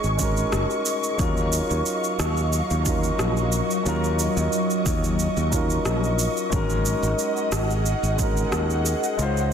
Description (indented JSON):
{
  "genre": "sunset chillout",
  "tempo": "90 BPM",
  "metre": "4/4",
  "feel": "swing 53% on 16ths",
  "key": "unclear",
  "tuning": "A4 = 445 Hz",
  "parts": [
    { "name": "dark baby grand piano", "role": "accompaniment", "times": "0.0-9.5 s", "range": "Gb3 to C5", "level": "-27 LUFS", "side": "moving between left 5 dB and right 5 dB", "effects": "auto-pan, ping-pong delay" },
    { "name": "ethereal airy pad", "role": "sustained chords", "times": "0.0-9.5 s", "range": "Gb3 to Db6", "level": "-27 LUFS", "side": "equal", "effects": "ensemble chorus, built-in reverb, tremolo, vintage 12-bit sampler grit" },
    { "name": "modern bright fingered electric bass", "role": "bass", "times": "0.0-9.5 s", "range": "Gb1 to Eb2", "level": "-25 LUFS", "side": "equal", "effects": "none" },
    { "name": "electronic cabasa and rim click", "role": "drums", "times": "0.0-9.5 s", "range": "none", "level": "-30 LUFS", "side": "right 1 dB", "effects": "overdrive" },
    { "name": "electronic kick drum", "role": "drums", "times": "0.2-8.3 s", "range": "none", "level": "-28 LUFS", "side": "equal", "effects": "overdrive" }
  ],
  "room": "moderate lush hall reverb, RT60 2.0 s",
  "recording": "dense, heavily limited modern master",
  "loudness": "-21 LUFS",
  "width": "side -8 dB against mid",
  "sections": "0.0-9.5 A section",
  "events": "none",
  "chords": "0.0 Ab7sus4; 1.2 Ebm9; 6.5 Ab7sus4"
}